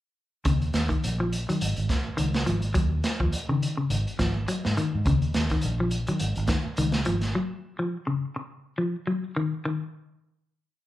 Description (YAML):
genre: afrobeat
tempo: 104 BPM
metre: 4/4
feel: swing 56% on 16ths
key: Eb minor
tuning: A4 = 439 Hz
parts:
  - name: semi-hollow electric guitar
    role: arpeggios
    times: 0.5-9.8 s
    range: Db3 to Gb3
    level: -28 LUFS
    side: left 2 dB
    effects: none
  - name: fingered electric bass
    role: bass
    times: 0.5-7.3 s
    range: Ab1 to Eb3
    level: -28 LUFS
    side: right 1 dB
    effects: none
  - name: crunchy breakbeat drum kit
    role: drums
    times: 0.5-7.3 s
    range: hi-hat, kick drum, snare drum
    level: -28 LUFS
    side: right 1 dB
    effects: none
room: light reverb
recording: band playing live in one room, lossy compression artefacts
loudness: -24 LUFS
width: side -14 dB against mid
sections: 0.5-9.6 groove; 9.6-10.9 final note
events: none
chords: 0.5 Eb7sus2; 1.6 Absus4; 2.8 Ebm9; 3.9 Ab7(no3); 5.1 Eb7sus2; 6.2 Absus4; 7.4 Dbadd11; 8.5 Dbadd9 (rootless); 9.6 N.C.